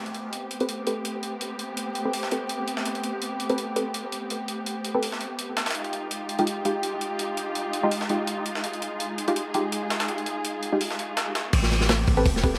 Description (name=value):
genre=drum and bass, jungle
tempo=166 BPM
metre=4/4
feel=swing 53% on 16ths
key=unclear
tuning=A4 = 440 Hz
part: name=muted studio string section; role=sustained chords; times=0.0-12.6 s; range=Ab3 to Ab4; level=-33 LUFS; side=equal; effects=none
part: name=breakbeat sampler-style drum kit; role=drums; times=0.1-12.5 s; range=hi-hat, snare drum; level=-34 LUFS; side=equal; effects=high-pass filter on hats, high-pass filter on snare, high-pass filter on room
part: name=filtered dub chord stab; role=stabs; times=0.6-12.5 s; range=Ab3 to B4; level=-31 LUFS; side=equal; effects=chorus, dub echo
part: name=soft dub sub bass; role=bass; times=11.5-12.6 s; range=E1 to A1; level=-28 LUFS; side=equal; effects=tube saturation
part: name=crunchy breakbeat drum kit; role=drums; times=11.5-12.6 s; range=crash cymbal, hi-hat, kick drum, snare drum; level=-25 LUFS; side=equal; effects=none
room=moderate lush hall reverb, RT60 2.0 s, studio reverb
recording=vinyl crackle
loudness=-27 LUFS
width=mono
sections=0.0-11.5 A section; 11.5-12.6 B section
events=drop 11.5-12.6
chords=0.0 Am9; 5.8 Fm9; 11.5 Am9